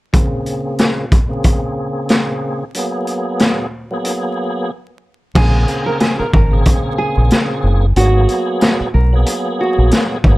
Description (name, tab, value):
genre	hip hop, boom-bap hip-hop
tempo	92 BPM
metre	4/4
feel	swing 58% on 16ths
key	unclear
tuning	A4 = 439 Hz
part	tonewheel organ	accompaniment	0.1-10.4 s	Db3 to Ab4	-20 LUFS	equal	chorus vibrato, fast rotary speaker, cassette tape, high-pass filter, low-pass filter
part	raw garage drum kit	drums	0.1-10.4 s	crash cymbal, hi-hat, kick drum, snare drum	-15 LUFS	equal	none
part	nylon-string guitar	melody	5.4-9.9 s	Gb4 to Bb4	-20 LUFS	right 2 dB	high-pass filter, low-pass filter, ping-pong delay
part	deep dub fingered electric bass	bass	5.4-10.4 s	Gb1 to Cb2	-12 LUFS	equal	none
room	light reverb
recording	vinyl crackle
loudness	-13 LUFS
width	side -19 dB against mid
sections	0.1-5.4 A section; 5.4-10.4 B section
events	filter sweep on tonewheel organ 0.1-5.4; break 4.7-5.4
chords	0.1 Bbm9; 2.7 Abm9; 5.4 Bbm9; 8.0 Abm9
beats	| 0.14 0.79 1.44 2.10 | 2.75 3.40 4.05 4.70 | 5.36 6.01 6.66 7.31 | 7.96 8.62 9.27 9.92